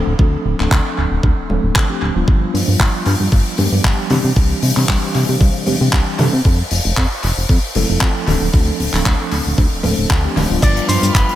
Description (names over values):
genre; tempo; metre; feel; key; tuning
nu-disco, nu disco; 115 BPM; 4/4; swing 53% on 16ths; unclear; A4 = 441 Hz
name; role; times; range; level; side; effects
mellow tine electric piano; accompaniment; 0.0-11.4 s; E3 to A4; -21 LUFS; equal; medium stereo tremolo, sidechain pumping, analog delay
chorused synth bass; bass; 0.0-11.2 s; D1 to C3; -18 LUFS; equal; tube saturation
electronic kick drum; drums; 0.2-11.3 s; none; -15 LUFS; equal; none
huge arena drum kit; drums; 0.6-11.4 s; crash cymbal, handclaps, hi-hat, shaker; -20 LUFS; left 1 dB; analog delay
congas; percussion; 1.5-10.5 s; none; -23 LUFS; left 2 dB; none
electric guitar with an envelope filter; melody; 10.6-11.4 s; B4 to D5; -19 LUFS; equal; analog delay
rich studio violin section; sustained chords; 10.6-11.4 s; B4 to F6; -28 LUFS; right 2 dB; sidechain pumping
room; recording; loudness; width
small room reverb; echo-heavy mix; -13 LUFS; side -13 dB against mid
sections
0.0-11.4 A section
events
none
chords
0.0 Dm7; 2.3 G7; 4.1 Cadd9; 6.5 Fmaj7; 8.3 Dm7; 10.6 G7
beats
| 0.19 0.71 1.24 1.76 | 2.28 2.80 3.32 3.85 | 4.37 4.89 5.41 5.93 | 6.45 6.97 7.50 8.02 | 8.54 9.06 9.58 10.11 | 10.63 11.15